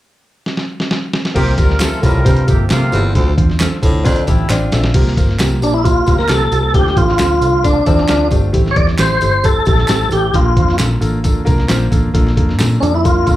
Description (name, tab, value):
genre	uptempo 1960s-style soul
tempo	133 BPM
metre	4/4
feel	straight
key	C mixolydian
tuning	A4 = 440 Hz
part	lo-fi sampler-style drum kit	drums	0.5-13.4 s	crash cymbal, hi-hat, kick drum, snare drum	-16 LUFS	equal	none
part	clear concert grand piano	accompaniment	1.3-13.4 s	A3 to A5	-21 LUFS	left 1 dB	plate reverb, slapback echo
part	warm horn section	second line	1.4-3.0 s	C3 to Bb4	-21 LUFS	equal	plate reverb, slapback echo
part	breathy baritone saxophone	riff	1.4-4.2 s	D2 to C3	-21 LUFS	right 2 dB	slapback echo
part	vintage muted fingered electric bass	bass	1.4-13.4 s	G1 to D3	-16 LUFS	equal	none
part	tambourine and handclaps	percussion	1.4-13.4 s	none	-28 LUFS	right 2 dB	none
part	archtop guitar, miked and amplified	riff	4.0-4.9, 7.6-8.5 s	C4 to G4	-22 LUFS	left 6 dB	slapback echo
part	tonewheel organ	melody	5.6-13.4 s	Db4 to D5	-15 LUFS	equal	chorus vibrato, fast rotary speaker, plate reverb, slapback echo
room	light reverb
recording	live gig heard through the venue's PA, club reverb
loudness	-11 LUFS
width	side -14 dB against mid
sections	0.0-1.4 A section; 1.4-4.9 B section; 4.9-13.4 C section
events	drum fill 0.5-1.4, 4.5-4.9; grand piano fill 4.0-4.9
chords	0.0 N.C.; 1.4 C7sus4; 3.2 Dm7; 4.9 C7sus4; 6.7 Dm7; 8.5 Am7; 10.3 Bbmaj7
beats	0.01 0.46 0.91 | 1.36 1.80 2.25 2.70 | 3.15 3.60 4.05 4.50 | 4.95 5.40 5.85 6.30 | 6.75 7.20 7.64 8.10 | 8.54 8.99 9.45 9.89 | 10.35 10.79 11.24 11.70 | 12.15 12.60 13.05